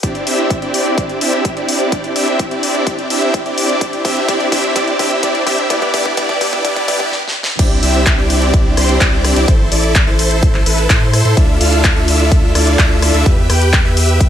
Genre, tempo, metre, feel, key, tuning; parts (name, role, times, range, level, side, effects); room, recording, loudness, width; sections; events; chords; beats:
EDM, festival progressive house; 127 BPM; 4/4; straight; C major; A4 = 438 Hz
supersaw chords; riff; 0.0-14.3 s; B3 to G5; -15 LUFS; equal; cassette tape, sidechain pumping, low-pass filter, tape echo
big-room dance drum kit; drums; 0.0-14.3 s; crash cymbal, handclaps, hi-hat, rim click, snare drum; -18 LUFS; left 1 dB; small room reverb
electronic kick drum; drums; 0.0-14.3 s; -14 LUFS; equal; small room reverb
saturated sub bass; bass; 7.6-14.3 s; A1 to A2; -15 LUFS; equal; sidechain pumping
light reverb; high-pass filter; -11 LUFS; side -10 dB against mid
0.0-7.6 A section; 7.6-14.3 B section
build-up 0.0-7.6; filter sweep on supersaw synth 0.0-7.6; drum fill 0.0-7.1, 7.1-7.6; stop 7.1-7.6; drop 7.6-14.3
0.0 Cadd9; 5.7 Em; 7.6 Cadd9; 9.5 Am; 11.4 Dmadd9; 13.3 Em
| 0.03 0.51 0.98 1.45 | 1.92 2.39 2.87 3.34 | 3.81 4.28 4.76 5.23 | 5.70 6.17 6.65 7.12 | 7.59 8.06 8.54 9.01 | 9.48 9.95 10.43 10.90 | 11.37 11.84 12.32 12.79 | 13.26 13.73 14.21